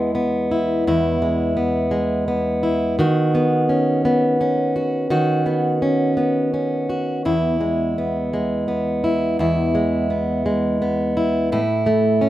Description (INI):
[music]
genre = pop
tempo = 56 BPM (dotted quarters)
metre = 6/8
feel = straight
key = E major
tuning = A4 = 437 Hz
[part]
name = fingerpicked plugged-in steel-string acoustic guitar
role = solo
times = 0.0-12.3 s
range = E2 to F#4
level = -17 LUFS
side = equal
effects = slapback echo
[sound]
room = little or no reverb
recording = recorded outdoors, with no room sound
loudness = -17 LUFS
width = side -14 dB against mid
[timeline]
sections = 0.0-12.3 A section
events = none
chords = 0.0 E; 3.0 Badd9/D#; 7.3 E; 11.5 A5